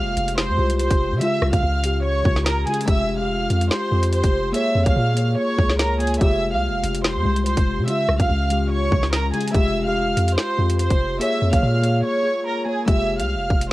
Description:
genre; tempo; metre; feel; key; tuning
hip hop, drill; 144 BPM; 4/4; half-time; F harmonic minor; A4 = 441 Hz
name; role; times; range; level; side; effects
warm studio violin section; melody; 0.0-13.7 s; Ab4 to F6; -24 LUFS; right 1 dB; cassette tape
muted felt-like synth keys; accompaniment; 0.0-13.7 s; Db3 to Db5; -26 LUFS; left 2 dB; chorus, cassette tape
glass harmonica; sustained chords; 0.0-12.9 s; Ab3 to Db5; -29 LUFS; left 2 dB; cassette tape
long sustained 808-style bass; bass; 0.0-13.7 s; F1 to C3; -22 LUFS; equal; none
drill drum kit; drums; 0.2-13.7 s; hi-hat, kick drum, rim click, snare drum; -21 LUFS; equal; cassette tape
room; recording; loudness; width
light reverb; home recording on cassette; -18 LUFS; side -17 dB against mid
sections
0.0-12.9 A section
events
break 12.0-12.9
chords
0.0 Fmadd9; 1.2 Db; 2.9 Fmadd9; 4.5 Bbm7; 6.2 Fmadd9; 7.9 Db; 9.5 Fmadd9; 11.2 Bbm7; 12.9 Fmadd9

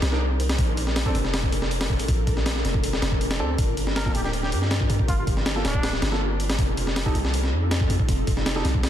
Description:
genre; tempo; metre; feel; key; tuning
drum and bass, jungle; 160 BPM; 4/4; straight; G minor; A4 = 439 Hz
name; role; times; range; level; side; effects
ethereal airy pad; sustained chords; 0.0-8.9 s; C4 to C5; -32 LUFS; equal; ensemble chorus, built-in reverb, tremolo, vintage 12-bit sampler grit
long sustained 808-style bass; bass; 0.0-8.9 s; D1 to G2; -26 LUFS; equal; none
breakbeat sampler-style drum kit; drums; 0.0-8.9 s; hi-hat, kick drum, snare drum; -24 LUFS; equal; none
warm grand piano; stabs; 0.1-1.1, 3.4-8.6 s; Bb3 to Bb4; -35 LUFS; right 2 dB; dub echo
trumpet with plunger mute; melody; 4.0-5.9 s; D4 to Bb4; -36 LUFS; equal; vintage 12-bit sampler grit, dub echo
room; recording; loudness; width
little or no reverb; dense, heavily limited modern master; -21 LUFS; side -11 dB against mid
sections
0.0-8.9 A section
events
none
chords
0.0 Cm7; 0.6 Bbmaj7; 3.6 Gm7; 6.6 F7

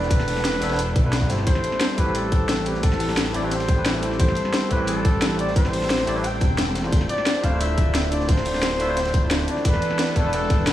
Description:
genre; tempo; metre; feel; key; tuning
liquid drum and bass; 176 BPM; 4/4; straight; A minor; A4 = 439 Hz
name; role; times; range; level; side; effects
warm flugelhorn; melody; 0.0-10.7 s; G4 to G5; -27 LUFS; left 1 dB; dub echo
barky tine electric piano; accompaniment; 0.0-10.7 s; A3 to E5; -28 LUFS; equal; overdrive, digital delay
lush unison pad; sustained chords; 0.0-10.7 s; E3 to A4; -30 LUFS; equal; chorus, sidechain pumping
dark detuned saw bass; bass; 0.0-10.7 s; D1 to B1; -25 LUFS; equal; none
crunchy breakbeat drum kit; drums; 0.0-10.7 s; hi-hat, ride cymbal, snare drum; -33 LUFS; equal; high-pass filter on cymbals, small room ambience, high-pass filter on hats, high-pass filter on snare, high-pass filter on room
drum and bass drum kit; drums; 0.1-10.7 s; hi-hat, snare drum; -26 LUFS; left 1 dB; small room ambience
electronic kick drum; drums; 0.1-10.6 s; none; -20 LUFS; equal; small room ambience
room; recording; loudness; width
light reverb, small room reverb; none; -19 LUFS; side -13 dB against mid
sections
0.0-10.7 A section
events
none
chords
0.0 E7sus4; 1.5 Am9; 6.9 Dm9; 9.5 E7sus4

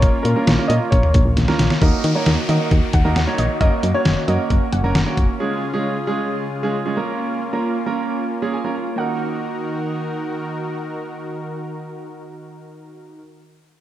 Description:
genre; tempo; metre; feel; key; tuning
synth-pop; 134 BPM; 4/4; straight; Eb minor; A4 = 440 Hz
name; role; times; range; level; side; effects
warm grand piano; melody; 0.0-1.3 s; Bb4 to Eb5; -24 LUFS; left 1 dB; tape echo
clear grand piano; accompaniment; 0.0-13.2 s; Ab3 to Bb5; -23 LUFS; right 3 dB; none
brassy analog pad; sustained chords; 0.0-13.2 s; Db3 to Bb4; -27 LUFS; left 1 dB; chorus
solid FM bass; bass; 0.0-5.3 s; F1 to Eb3; -19 LUFS; equal; none
detuned 8-bit digital drum machine; drums; 0.0-5.3 s; hi-hat, kick drum, snare drum, toms; -18 LUFS; equal; none
warbly dusty pluck; second line; 1.8-5.0, 9.0-10.3 s; Db5 to Gb5; -26 LUFS; equal; chorus, tape echo
downlifter; sound effects; 1.8-5.4 s; none; -32 LUFS; left 1 dB; none
room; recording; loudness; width
moderate echo chamber reverb, RT60 1.9 s; dark, warm production; -17 LUFS; side -13 dB against mid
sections
0.0-1.8 A section; 1.8-9.0 B section; 9.0-12.6 C section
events
drum fill 1.4-1.8; grand piano fill 8.3-9.0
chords
0.0 Bbm; 1.8 Ebm; 3.6 Gb; 5.4 Db; 7.0 Bbm; 9.0 Ebm

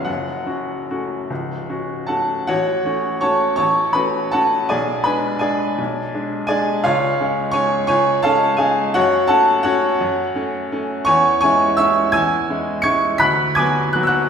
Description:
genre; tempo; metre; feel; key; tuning
classical, piano waltz; 141-178 BPM; 3/4; rubato; F# minor; A4 = 440 Hz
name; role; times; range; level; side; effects
bright upright piano; solo; 0.0-14.3 s; C#1 to C#7; -16 LUFS; equal; none
room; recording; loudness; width
wet scoring stage reverb, RT60 1.6 s; heard from further back in the room; -16 LUFS; side -7 dB against mid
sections
0.0-2.5 A section; 2.5-14.3 B section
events
none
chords
0.1 F#m; 2.5 F#m/A; 4.7 G#dim/B; 6.9 C#; 9.0 F#m; 11.1 C#m/E; 13.2 Bm/D

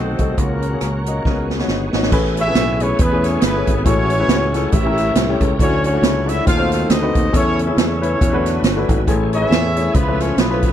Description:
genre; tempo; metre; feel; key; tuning
uptempo gospel; 138 BPM; 4/4; swing 57% on 8ths; A major; A4 = 440 Hz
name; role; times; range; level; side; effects
mellow horn section; melody; 0.0-10.7 s; A#3 to F5; -21 LUFS; equal; none
warm baby grand piano; accompaniment; 0.0-10.7 s; A2 to E5; -22 LUFS; left 5 dB; none
bright tonewheel organ; sustained chords; 0.0-10.7 s; A#2 to E5; -26 LUFS; right 3 dB; fast rotary speaker, overdrive, chorus vibrato
fingered electric bass; bass; 0.0-10.7 s; G1 to E2; -21 LUFS; equal; none
swinging big-band drum kit; drums; 0.2-10.7 s; crash cymbal, hi-hat, kick drum, rim click, snare drum; -18 LUFS; right 1 dB; none
room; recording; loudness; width
little or no reverb; none; -14 LUFS; side -10 dB against mid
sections
0.0-2.1 A section; 2.1-10.7 B section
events
drum fill 1.2-2.1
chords
0.4 F#/C#; 1.2 C#9sus4; 2.1 Amaj9; 3.9 F#m9/A; 4.7 A7b9; 5.6 Dmaj9; 6.5 D#dim7; 7.3 A/E; 8.2 E9sus4; 9.1 Amaj7; 9.9 C#7alt

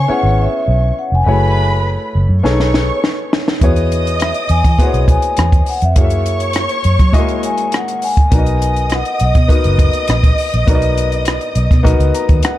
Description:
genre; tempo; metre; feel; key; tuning
lush 1970s-style soul; 102 BPM; 4/4; straight; B major; A4 = 440 Hz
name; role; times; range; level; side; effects
vibraphone with soft mallets; melody; 0.0-12.4 s; D#5 to G#5; -20 LUFS; left 1 dB; none
warm studio violin section; second line; 0.0-12.6 s; B4 to D#6; -23 LUFS; right 1 dB; none
warm baby grand piano; accompaniment; 0.0-12.6 s; G#3 to A#5; -20 LUFS; left 3 dB; none
vintage muted fingered electric bass; bass; 0.0-12.4 s; E#1 to F#3; -15 LUFS; equal; none
compact cocktail drum kit; drums; 2.5-12.6 s; hi-hat, kick drum, rim click, snare drum; -14 LUFS; equal; none
room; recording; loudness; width
studio reverb; dark, warm production; -11 LUFS; side -14 dB against mid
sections
0.0-12.6 A section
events
drum fill 2.4-3.6; grand piano fill 11.8-12.6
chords
0.0 C#m7; 1.3 F#m9; 2.4 B13; 3.6 E69; 6.0 F#13; 8.3 Bmaj7

